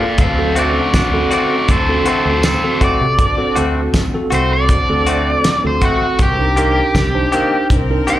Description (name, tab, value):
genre	straight-eighth soul blues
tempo	80 BPM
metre	4/4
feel	straight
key	unclear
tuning	A4 = 436 Hz
part	biting overdriven guitar	melody	0.0-8.2 s	F#4 to G5	-17 LUFS	equal	slapback echo
part	tine electric piano	accompaniment	0.0-8.2 s	Bb3 to C5	-20 LUFS	right 2 dB	medium stereo tremolo, slapback echo
part	direct-recorded clean electric guitar	stabs	0.0-8.2 s	Eb3 to G4	-22 LUFS	left 4 dB	plate reverb, slapback echo, tape echo
part	fingered electric bass	bass	0.0-8.0 s	C2 to C3	-19 LUFS	equal	none
part	muted studio string section	sustained chords	0.2-8.2 s	C4 to Bb4	-27 LUFS	left 2 dB	none
part	cloth-damped thuddy drum kit	drums	0.2-8.2 s	hi-hat, kick drum, snare drum, tambourine	-17 LUFS	equal	none
room	light reverb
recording	live gig heard through the venue's PA, club reverb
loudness	-12 LUFS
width	side -13 dB against mid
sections	0.0-8.2 A section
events	none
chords	0.2 D7; 6.2 Cm7